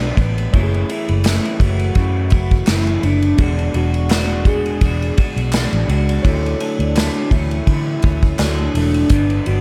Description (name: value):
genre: indie pop, bedroom pop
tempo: 84 BPM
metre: 4/4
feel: swing 55% on 16ths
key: F# minor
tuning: A4 = 440 Hz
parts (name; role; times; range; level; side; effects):
- electric guitar through a small old amp; accompaniment; 0.0-9.6 s; F#2 to F#4; -27 LUFS; equal; subtle chorus, warbly pitch drift
- mellow tine electric piano; accompaniment; 0.0-9.1 s; A3 to F#5; -31 LUFS; equal; cassette tape
- vintage muted fingered electric bass; bass; 0.0-9.6 s; E1 to D3; -21 LUFS; equal; none
- unplugged drum kit; drums; 0.2-9.6 s; hi-hat, kick drum, ride cymbal, snare drum; -21 LUFS; equal; none
- soft octave-layered synth lead; melody; 0.9-9.6 s; D4 to G#4; -25 LUFS; equal; subtle chorus, diffuse ambient delay
- group handclap; percussion; 1.2-8.6 s; none; -36 LUFS; equal; none
room: light reverb, small room reverb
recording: none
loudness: -17 LUFS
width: mono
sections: 0.0-9.6 A section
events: none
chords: 0.0 Gmaj7; 0.5 F#m7; 3.4 E9; 6.2 Dmaj7; 9.1 Gmaj7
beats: | 0.54 1.25 1.97 2.68 | 3.40 4.11 4.82 5.54 | 6.25 6.96 7.68 8.39 | 9.11